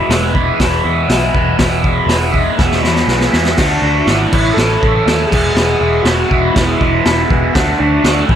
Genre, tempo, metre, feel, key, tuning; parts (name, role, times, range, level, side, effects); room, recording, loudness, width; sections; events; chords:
garage rock duo or trio; 121 BPM; 4/4; straight; E mixolydian; A4 = 440 Hz
raw garage guitar; riff; 0.0-8.4 s; E2 to F#4; -15 LUFS; equal; overdrive, phaser
vintage muted picked electric bass; bass; 0.1-8.4 s; E1 to E2; -18 LUFS; equal
raw garage drum kit; drums; 0.1-8.4 s; crash cymbal, hi-hat, kick drum, snare drum; -16 LUFS; equal
overdriven combo organ; melody; 3.8-8.3 s; D4 to A4; -17 LUFS; equal
light reverb; -11 LUFS; side -9 dB against mid
0.0-3.6 A section; 3.6-8.4 B section
drum fill 2.6-3.6
0.0 E; 3.6 D; 4.3 A; 5.3 E; 7.5 D